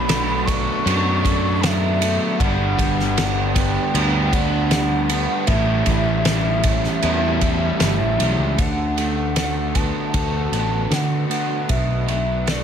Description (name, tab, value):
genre	rock, shoegaze and dream pop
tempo	78 BPM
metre	4/4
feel	straight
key	unclear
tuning	A4 = 441 Hz
part	pure breathy sine lead	melody	0.0-12.6 s	D5 to C#6	-26 LUFS	equal	chorus, slapback echo
part	shimmering ambient pad	sustained chords	0.0-12.6 s	A3 to B5	-32 LUFS	right 1 dB	chorus, built-in reverb
part	crunchy overdriven guitar	riff	0.0-8.6 s	G2 to E4	-26 LUFS	equal	spring reverb
part	overdriven semi-hollow guitar	riff	0.0-12.6 s	G2 to F#4	-26 LUFS	right 9 dB	reverse reverb
part	raw garage guitar	riff	0.0-12.6 s	A2 to F#4	-27 LUFS	left 11 dB	overdrive, wide subtle chorus
part	picked electric bass	bass	0.0-12.6 s	G1 to D3	-23 LUFS	equal	none
part	loose indie drum kit	drums	0.1-12.6 s	kick drum, ride cymbal, snare drum	-23 LUFS	equal	none
room	studio reverb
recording	none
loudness	-17 LUFS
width	side -8 dB against mid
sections	0.0-8.6 A section; 8.6-12.6 B section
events	none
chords	0.0 Bm7; 2.4 Gmaj7; 5.5 A7; 8.6 D6; 11.7 Bm7